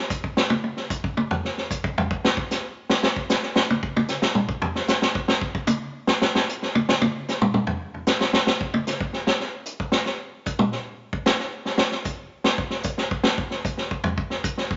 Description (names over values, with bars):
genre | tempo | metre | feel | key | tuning
jazz | 151 BPM | 4/4 | swing 66% on 8ths | none | none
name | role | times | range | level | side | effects
vintage drum kit | drums | 0.1-14.8 s | hi-hat, kick drum, snare drum, toms | -24 LUFS | equal | none
room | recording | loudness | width
moderate large studio reverb, RT60 1.2 s | nothing above 7.6 kHz | -24 LUFS | mono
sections
0.0-9.3 A section; 9.3-14.8 A section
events
drum solo 0.0-9.3, 9.3-14.8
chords
none